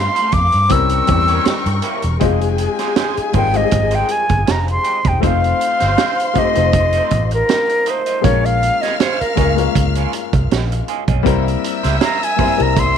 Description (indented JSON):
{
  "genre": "lush 1970s-style soul",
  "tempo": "80 BPM",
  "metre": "4/4",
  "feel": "swing 54% on 16ths",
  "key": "F minor",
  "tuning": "A4 = 440 Hz",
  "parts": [
    { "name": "breathy silver concert flute", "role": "melody", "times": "0.0-13.0 s", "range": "Bb4 to E6", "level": "-17 LUFS", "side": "equal", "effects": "none" },
    { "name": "warm studio string section", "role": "second line", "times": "0.0-13.0 s", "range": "A3 to F6", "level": "-25 LUFS", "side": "left 2 dB", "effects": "none" },
    { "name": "warm baby grand piano", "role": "accompaniment", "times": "0.0-13.0 s", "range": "G3 to Eb5", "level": "-21 LUFS", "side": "left 16 dB", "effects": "none" },
    { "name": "vintage muted fingered electric bass", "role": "bass", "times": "0.0-13.0 s", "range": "E1 to G2", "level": "-18 LUFS", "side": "equal", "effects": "none" },
    { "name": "electric guitar at the edge of break-up", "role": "riff", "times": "0.2-12.8 s", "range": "Ab3 to Eb5", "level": "-27 LUFS", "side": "right 14 dB", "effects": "wah, tube saturation" },
    { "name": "vintage drum kit", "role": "drums", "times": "0.2-13.0 s", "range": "hi-hat, kick drum, snare drum", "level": "-20 LUFS", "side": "right 5 dB", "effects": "none" }
  ],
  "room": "light reverb, small room ambience",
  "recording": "1960s-style stereo with parts hard left and right",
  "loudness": "-13 LUFS",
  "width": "side -8 dB against mid",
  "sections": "0.0-2.2 A section; 2.2-13.0 B section",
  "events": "flute solo 2.2-13.0",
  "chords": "0.0 Gm11; 0.7 C7b9; 2.2 Fm9; 5.2 F7; 8.2 Bbm7; 11.3 C7"
}